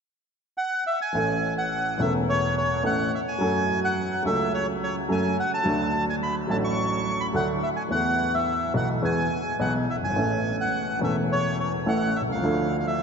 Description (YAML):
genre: tango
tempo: 106 BPM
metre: 4/4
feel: rubato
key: A major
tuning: A4 = 444 Hz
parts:
  - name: bandoneon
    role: melody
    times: 0.6-13.0 s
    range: C#5 to C#6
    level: -26 LUFS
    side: equal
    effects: none
  - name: warm upright piano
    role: accompaniment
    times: 1.1-13.0 s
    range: E1 to A4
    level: -25 LUFS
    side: equal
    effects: none
room: wet cathedral reverb, RT60 7.1 s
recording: in a vast, echoing space, nothing above 7.8 kHz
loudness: -22 LUFS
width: side -6 dB against mid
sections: 0.0-1.1 A section; 1.1-13.0 B section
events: none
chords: 0.0 N.C.; 1.1 A; 3.4 F#m; 5.7 D; 7.9 Esus4; 9.0 E; 10.2 A; 12.4 Dm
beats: 0.02 0.58 | 1.15 1.72 2.28 2.85 | 3.41 3.98 4.54 5.10 | 5.66 6.22 6.78 7.34 | 7.91 8.47 9.03 9.60 | 10.17 10.74 11.30 11.87 | 12.44 13.00